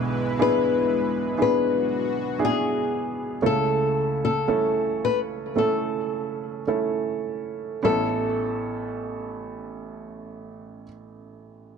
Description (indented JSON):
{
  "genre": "pop",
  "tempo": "51-61 BPM",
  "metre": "4/4",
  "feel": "straight",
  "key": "A major",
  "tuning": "A4 = 440 Hz",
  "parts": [
    { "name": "nylon-string guitar", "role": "melody", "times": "0.0-10.8 s", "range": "G#4 to B4", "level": "-25 LUFS", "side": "left 6 dB", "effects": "tape echo" },
    { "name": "warm upright piano", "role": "accompaniment", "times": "0.0-11.8 s", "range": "A1 to A4", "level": "-26 LUFS", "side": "right 5 dB", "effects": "none" },
    { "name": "chorused pulse-width pad", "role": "sustained chords", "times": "0.0-3.4 s", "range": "D3 to B4", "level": "-31 LUFS", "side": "left 3 dB", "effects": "none" }
  ],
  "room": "light reverb, studio reverb",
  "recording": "dry, close 1970s-style studio recording",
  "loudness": "-22 LUFS",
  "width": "side -6 dB against mid",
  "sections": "0.0-7.8 A section; 7.8-11.8 B section",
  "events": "slowing down 0.0-7.8",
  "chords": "0.0 E7/B; 3.4 A/C#; 7.8 Aadd9"
}